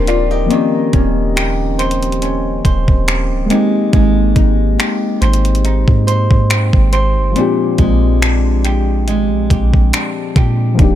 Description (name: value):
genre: contemporary R&B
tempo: 70 BPM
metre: 4/4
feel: swing 54% on 16ths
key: unclear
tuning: A4 = 440 Hz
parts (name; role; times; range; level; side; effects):
- muted felt-like synth keys; accompaniment; 0.0-11.0 s; F3 to Eb5; -17 LUFS; left 4 dB; chorus, analog delay
- flamenco guitar; arpeggios; 0.0-11.0 s; Bb2 to C5; -20 LUFS; right 3 dB; analog delay
- soft 808-style bass; bass; 0.0-11.0 s; Db1 to Bb2; -15 LUFS; equal; none
- crisp 8-bit digital drum machine; drums; 0.1-11.0 s; finger snaps, hi-hat, kick drum; -15 LUFS; equal; overdrive, analog delay
room: little or no reverb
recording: echo-heavy mix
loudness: -11 LUFS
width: side -12 dB against mid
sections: 0.0-10.8 A section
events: none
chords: 0.0 Eb6; 0.5 Eb13; 3.5 Abmaj7; 7.4 Bb13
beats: | 0.51 1.36 2.22 3.08 | 3.94 4.79 5.65 6.51 | 7.36 8.22 9.08 9.94 | 10.79